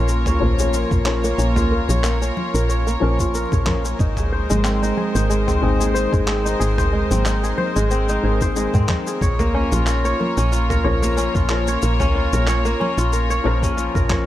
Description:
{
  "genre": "organic downtempo",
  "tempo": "92 BPM",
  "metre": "4/4",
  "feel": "swing 55% on 16ths",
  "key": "Bb minor",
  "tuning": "A4 = 439 Hz",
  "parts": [
    { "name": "warm studio string section", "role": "sustained chords", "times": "0.0-14.3 s", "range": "Ab3 to Db5", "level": "-26 LUFS", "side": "right 1 dB", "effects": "sidechain pumping" },
    { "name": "kora", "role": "arpeggios", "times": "0.0-14.3 s", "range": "Ab3 to Db5", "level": "-23 LUFS", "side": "equal", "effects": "low-pass filter, tape echo" },
    { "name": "woody FM bass", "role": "bass", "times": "0.0-14.3 s", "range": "Ab1 to Ab2", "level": "-20 LUFS", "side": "equal", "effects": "sidechain pumping" },
    { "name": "dusty soul sampler-style drum kit", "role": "drums", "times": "0.1-14.2 s", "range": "handclaps, shaker, toms", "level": "-27 LUFS", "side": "equal", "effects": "none" },
    { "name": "bongos and congas", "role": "percussion", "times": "0.3-14.2 s", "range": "none", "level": "-32 LUFS", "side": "left 2 dB", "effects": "none" },
    { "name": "felt-muted upright piano", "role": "accompaniment", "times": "0.4-14.3 s", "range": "Eb3 to Bb4", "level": "-27 LUFS", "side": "left 4 dB", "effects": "sidechain pumping, low-pass filter, tape echo" },
    { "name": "electronic kick drum", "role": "drums", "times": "0.9-14.2 s", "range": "none", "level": "-20 LUFS", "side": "equal", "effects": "none" }
  ],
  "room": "light reverb",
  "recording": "none",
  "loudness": "-17 LUFS",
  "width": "side -13 dB against mid",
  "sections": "0.0-14.3 A section",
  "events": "filter sweep on kora 0.0-14.3; filter sweep on felt piano 0.0-14.3",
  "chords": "0.0 Bbm; 4.0 Ab; 9.2 Bbm"
}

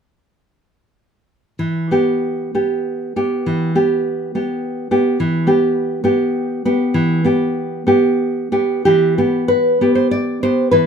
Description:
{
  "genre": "romantic piece for solo classical guitar",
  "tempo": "86-108 BPM",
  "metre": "3/4",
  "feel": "rubato",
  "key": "E minor",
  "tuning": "A4 = 440 Hz",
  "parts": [
    { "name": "nylon-string guitar", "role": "solo", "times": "1.6-10.9 s", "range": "E3 to D5", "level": "-14 LUFS", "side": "equal", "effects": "none" }
  ],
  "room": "light reverb",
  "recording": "minimal, uncompressed stereo recording",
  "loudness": "-15 LUFS",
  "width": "side -7 dB against mid",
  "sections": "1.6-8.9 A section; 8.9-10.9 B section",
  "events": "none",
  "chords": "1.6 Em"
}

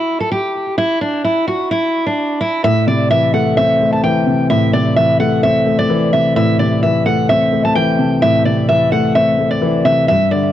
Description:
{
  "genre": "hip hop",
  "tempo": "129 BPM",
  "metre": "4/4",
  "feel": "half-time",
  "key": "A dorian",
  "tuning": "A4 = 440 Hz",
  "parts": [
    { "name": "picked steel-string acoustic guitar", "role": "melody", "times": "0.0-10.5 s", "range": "D4 to A5", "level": "-15 LUFS", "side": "right 1 dB", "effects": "low-pass filter, analog delay" },
    { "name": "dark concert grand piano", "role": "accompaniment", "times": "2.6-10.5 s", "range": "G2 to C4", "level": "-14 LUFS", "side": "left 1 dB", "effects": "low-pass filter" }
  ],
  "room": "studio ambience",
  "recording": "dry, gritty hardware recording",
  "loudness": "-12 LUFS",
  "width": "side -11 dB against mid",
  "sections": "0.0-2.6 A section; 2.6-10.5 B section",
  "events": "none",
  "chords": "0.0 N.C.; 2.6 Am"
}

